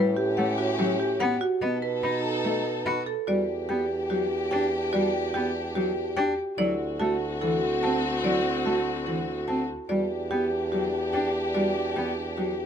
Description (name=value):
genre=classical, minimalist pattern music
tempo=145 BPM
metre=4/4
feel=straight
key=E minor from 3.3 s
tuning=A4 = 440 Hz
part: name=marimba with medium hard mallets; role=melody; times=0.0-12.6 s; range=G4 to B5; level=-31 LUFS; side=left 8 dB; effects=none
part: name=warm French horn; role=second line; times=0.0-12.7 s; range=C#4 to G4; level=-32 LUFS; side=right 2 dB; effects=none
part: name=rich cello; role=accompaniment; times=0.0-12.5 s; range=E3 to F#4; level=-30 LUFS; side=right 1 dB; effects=none
part: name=rich chamber string section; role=sustained chords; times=0.0-12.7 s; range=C4 to A4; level=-33 LUFS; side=left 3 dB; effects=none
part: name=marimba with medium mallets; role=arpeggios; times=0.0-12.6 s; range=E4 to B4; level=-30 LUFS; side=right 5 dB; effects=none
part: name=dark bassoon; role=bass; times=0.0-12.7 s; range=D2 to B2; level=-33 LUFS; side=equal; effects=none
room=little or no reverb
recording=close, detailed microphones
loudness=-24 LUFS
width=side -8 dB against mid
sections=0.0-3.3 A section; 3.3-12.7 B section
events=none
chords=0.0 A7; 1.6 B7; 3.3 Em7; 6.6 D7; 9.9 Em7